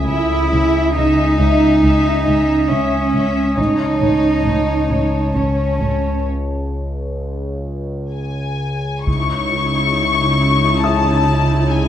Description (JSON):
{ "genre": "cinematic, suspense film score", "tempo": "63-69 BPM", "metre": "3/4", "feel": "straight", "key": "C# minor", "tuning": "A4 = 438 Hz", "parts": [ { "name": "rich studio violin section", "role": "melody", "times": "0.0-11.9 s", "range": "C#5 to C#6", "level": "-22 LUFS", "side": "left 6 dB", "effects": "none" }, { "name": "glass harmonica", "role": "sustained chords", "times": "0.0-11.9 s", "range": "C#4 to D#6", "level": "-25 LUFS", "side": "left 1 dB", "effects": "none" }, { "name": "warm studio cello section", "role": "bass", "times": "0.0-11.9 s", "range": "C#3 to E4", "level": "-18 LUFS", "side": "right 2 dB", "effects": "none" }, { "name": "analog drone", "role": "drone", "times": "0.0-11.9 s", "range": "C#2", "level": "-20 LUFS", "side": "equal", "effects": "chorus" }, { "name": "dark concert grand piano", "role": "texture", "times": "0.0-3.6, 10.8-11.9 s", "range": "E5 to G#6", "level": "-31 LUFS", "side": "left 4 dB", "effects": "none" }, { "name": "rich studio double bass section", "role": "bass", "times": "0.1-9.9 s", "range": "A1 to C#2", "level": "-24 LUFS", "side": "right 2 dB", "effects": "none" }, { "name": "warm studio viola section", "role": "accompaniment", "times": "9.1-11.9 s", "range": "D#4 to E4", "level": "-22 LUFS", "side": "equal", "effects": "none" }, { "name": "taiko ensemble", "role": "drums", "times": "9.1-10.8 s", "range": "none", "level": "-23 LUFS", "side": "left 1 dB", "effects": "none" } ], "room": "wet scoring stage reverb, RT60 1.8 s", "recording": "dark, warm production", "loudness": "-14 LUFS", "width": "side -10 dB against mid", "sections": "0.0-9.1 A section; 9.1-11.9 A section", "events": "break 6.3-9.1", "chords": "0.0 C#madd9; 3.6 A; 9.1 C#madd9" }